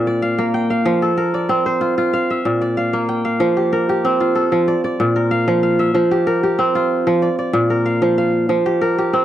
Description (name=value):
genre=west african traditional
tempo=94 BPM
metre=4/4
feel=straight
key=F major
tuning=A4 = 436 Hz
part: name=kora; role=solo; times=0.0-9.2 s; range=Bb2 to G5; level=-15 LUFS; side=equal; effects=none
room=small room ambience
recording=dry, close 1970s-style studio recording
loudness=-15 LUFS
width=side -12 dB against mid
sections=0.0-3.4 A section; 3.4-9.2 B section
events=none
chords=0.0 Bb; 0.9 F; 2.1 Bb; 3.4 F; 4.7 Bb; 5.9 F5; 7.2 Bb; 8.5 F5